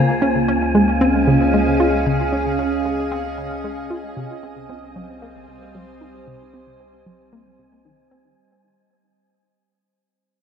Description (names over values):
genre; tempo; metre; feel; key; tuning
ambient, sequencer-driven space music; 114 BPM; 4/4; straight; unclear; A4 = 440 Hz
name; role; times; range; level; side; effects
evolving wavetable pad; sustained chords; 0.0-8.4 s; G3 to F5; -22 LUFS; equal; chorus, built-in reverb
analog pluck; riff; 0.0-8.3 s; C3 to F4; -20 LUFS; equal; chorus, analog delay
warm sub bass; bass; 0.0-8.4 s; C2 to Db2; -28 LUFS; left 1 dB; none
wind-like tuned noise texture; texture; 0.0-8.4 s; Ab5; -28 LUFS; right 1 dB; built-in reverb
room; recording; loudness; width
moderate plate reverb, RT60 2.9 s; none; -16 LUFS; side -7 dB against mid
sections
0.0-8.4 A section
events
fade-out on sub bass 0.0-8.4; fade-out 0.0-8.4; filter sweep on synth arpeggio sound 0.0-8.4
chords
0.0 Dbadd9; 4.2 Cdim